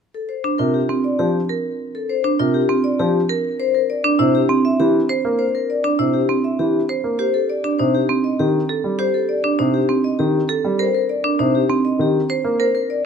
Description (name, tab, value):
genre	classical, minimalist pattern music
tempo	200 BPM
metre	6/4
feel	straight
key	Bb major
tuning	A4 = 440 Hz
part	vibraphone with medium hard mallets	melody	0.1-13.1 s	G4 to E5	-21 LUFS	left 8 dB	none
part	marimba with hard mallets	arpeggios	0.4-12.8 s	C4 to C5	-20 LUFS	right 5 dB	none
part	clear baby grand piano	accompaniment	0.6-12.6 s	C3 to Bb3	-22 LUFS	right 1 dB	none
room	light reverb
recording	close, detailed microphones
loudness	-16 LUFS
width	side -6 dB against mid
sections	0.0-13.1 A section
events	none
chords	0.0 Bbadd9; 3.6 C; 7.2 Cm69; 10.8 Ebmaj7(no3)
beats	0.29 0.59 0.89 1.19 1.49 | 1.79 2.09 2.39 2.69 2.99 3.29 | 3.59 3.89 4.19 4.49 4.79 5.09 | 5.39 5.69 5.99 6.29 6.59 6.89 | 7.19 7.49 7.79 8.09 8.39 8.69 | 8.99 9.29 9.59 9.89 10.19 10.49 | 10.79 11.09 11.39 11.69 11.99 12.29 | 12.59 12.89